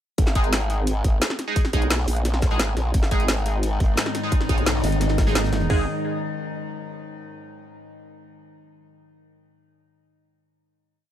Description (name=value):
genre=dark technical drum and bass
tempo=174 BPM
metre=4/4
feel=straight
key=G# minor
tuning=A4 = 439 Hz
part: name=growl bass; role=bass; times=0.2-5.9 s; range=G#1 to B1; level=-23 LUFS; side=equal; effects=chorus, tube saturation
part: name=crunchy breakbeat drum kit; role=drums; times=0.2-5.7 s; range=hi-hat, snare drum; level=-37 LUFS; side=equal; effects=none
part: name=drum and bass drum kit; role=drums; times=0.2-5.8 s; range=hi-hat, kick drum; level=-21 LUFS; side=equal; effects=none
part: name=drum and bass drum kit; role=drums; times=0.2-5.6 s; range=hi-hat, snare drum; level=-26 LUFS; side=equal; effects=overdrive
part: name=band-passed chord stab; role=stabs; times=0.4-5.8 s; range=G#3 to G#4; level=-29 LUFS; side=right 2 dB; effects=phaser, wide subtle chorus, analog delay
part: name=metallic inharmonic drone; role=sustained chords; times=3.4-5.9 s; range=G#2 to D#4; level=-28 LUFS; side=left 1 dB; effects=chorus, built-in reverb, sidechain pumping
part: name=pulsing pluck wobble bass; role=bass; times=4.8-5.7 s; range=G#1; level=-22 LUFS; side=equal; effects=chorus, tube saturation
room=light reverb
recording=none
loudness=-20 LUFS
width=side -11 dB against mid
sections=0.2-5.7 drop; 5.7-7.1 final chord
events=drop 0.2-5.7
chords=0.2 G#5